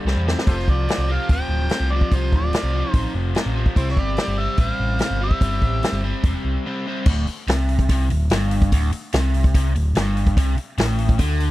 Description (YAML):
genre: blues rock power trio and southern rock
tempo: 145 BPM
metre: 4/4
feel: straight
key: unclear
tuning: A4 = 445 Hz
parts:
  - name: overdriven electric guitar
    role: riff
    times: 0.0-11.5 s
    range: D2 to C4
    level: -26 LUFS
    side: left 1 dB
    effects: spring reverb
  - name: overdriven picked electric bass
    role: bass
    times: 0.1-11.5 s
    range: D1 to E2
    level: -21 LUFS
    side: equal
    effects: none
  - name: vintage drum kit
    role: drums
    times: 0.1-11.5 s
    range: crash cymbal, hi-hat, kick drum, snare drum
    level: -19 LUFS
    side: equal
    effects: none
  - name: overdriven harmonica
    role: melody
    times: 0.5-6.0 s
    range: G4 to G5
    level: -28 LUFS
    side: equal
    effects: tape echo
  - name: dark smooth lead guitar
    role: second line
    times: 0.5-6.0 s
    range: E4 to C5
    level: -32 LUFS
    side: right 3 dB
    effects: overdrive
room: little or no reverb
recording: dry, close 1970s-style studio recording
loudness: -18 LUFS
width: side -16 dB against mid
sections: 0.0-7.1 A section; 7.1-11.5 B section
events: drum fill 0.1-0.5; break 6.7-7.1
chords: 0.1 C5; 0.5 F5; 3.8 C; 7.1 D7sus4; 10.4 C5